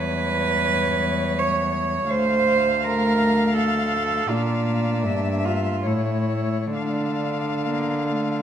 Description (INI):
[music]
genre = classical, lyrical piece for cello ensemble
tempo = 65-86 BPM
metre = 3/4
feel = rubato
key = D minor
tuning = A4 = 440 Hz
[part]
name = warm cello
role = melody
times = 0.0-8.4 s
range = C#5 to F5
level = -30 LUFS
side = left 7 dB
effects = none
[part]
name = warm cello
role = second line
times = 0.0-8.4 s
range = D4 to C#5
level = -23 LUFS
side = right 4 dB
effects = none
[part]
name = dark cello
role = accompaniment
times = 0.0-8.4 s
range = G3 to Bb3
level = -30 LUFS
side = left 3 dB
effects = none
[part]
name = warm cello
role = bass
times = 0.0-8.4 s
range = D2 to D3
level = -24 LUFS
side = equal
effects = none
[sound]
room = moderate recital hall reverb, RT60 1.3 s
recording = none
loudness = -20 LUFS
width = side -9 dB against mid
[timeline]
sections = 0.0-8.4 A section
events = none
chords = 0.0 C#dim/E; 2.1 Dm; 4.3 Bb; 5.1 Em7b5/G; 5.9 A; 6.7 Dm